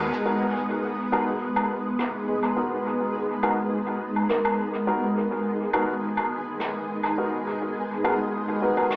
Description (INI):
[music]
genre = ambient dub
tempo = 104 BPM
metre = 4/4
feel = straight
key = G# minor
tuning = A4 = 440 Hz
[part]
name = granular cloud pad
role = sustained chords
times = 0.0-9.0 s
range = G#3 to G#4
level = -27 LUFS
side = equal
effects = built-in reverb, ensemble chorus
[part]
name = felt-muted upright piano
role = arpeggios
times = 0.0-9.0 s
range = G#3 to A#4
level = -31 LUFS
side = equal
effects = low-pass filter, tape echo
[part]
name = dark upright piano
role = stabs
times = 0.3-8.9 s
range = B3 to A#4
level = -29 LUFS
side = equal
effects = dub echo
[part]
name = woodblock and rim click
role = drums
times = 1.1-9.0 s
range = none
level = -30 LUFS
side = equal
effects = low-pass filter on snare, low-pass filter on perc, low-pass filter on room, dub echo
[sound]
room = wet plate reverb, RT60 2.0 s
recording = dreamy mix soaked in reverb, small speaker sound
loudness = -23 LUFS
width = side -25 dB against mid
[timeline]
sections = 0.3-9.0 A section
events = filter sweep on felt piano 0.3-9.0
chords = 0.3 G#m9